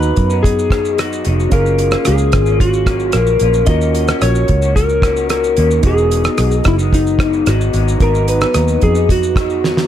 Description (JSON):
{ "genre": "indie pop, bedroom pop", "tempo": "111 BPM", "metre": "4/4", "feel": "straight", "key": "unclear", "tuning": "A4 = 440 Hz", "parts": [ { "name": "electric slide guitar", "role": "melody", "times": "0.0-9.9 s", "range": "D#4 to D#5", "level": "-17 LUFS", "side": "left 2 dB", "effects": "lush chorus, analog delay" }, { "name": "bright reed electric piano", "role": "accompaniment", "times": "0.0-9.9 s", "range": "B3 to A#5", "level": "-23 LUFS", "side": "right 4 dB", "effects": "cassette tape, analog delay" }, { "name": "electric guitar through a small old amp", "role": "accompaniment", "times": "0.0-9.9 s", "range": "G#2 to F#4", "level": "-22 LUFS", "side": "left 3 dB", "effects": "wide subtle chorus, warbly pitch drift, analog delay" }, { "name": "vintage muted fingered electric bass", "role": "bass", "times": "0.0-9.9 s", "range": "E1 to F#2", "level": "-16 LUFS", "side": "equal", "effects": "none" }, { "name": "damped 70s drum kit", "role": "drums", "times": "0.0-9.9 s", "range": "hi-hat, kick drum, rim click, shaker, snare drum", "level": "-17 LUFS", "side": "right 1 dB", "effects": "none" } ], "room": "studio reverb", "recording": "echo-heavy mix", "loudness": "-12 LUFS", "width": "side -10 dB against mid", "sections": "0.0-9.9 A section", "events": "drum fill 9.6", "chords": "0.0 G#m7; 1.5 F#maj7; 3.7 D#m7; 5.8 Emaj7; 8.0 G#m7" }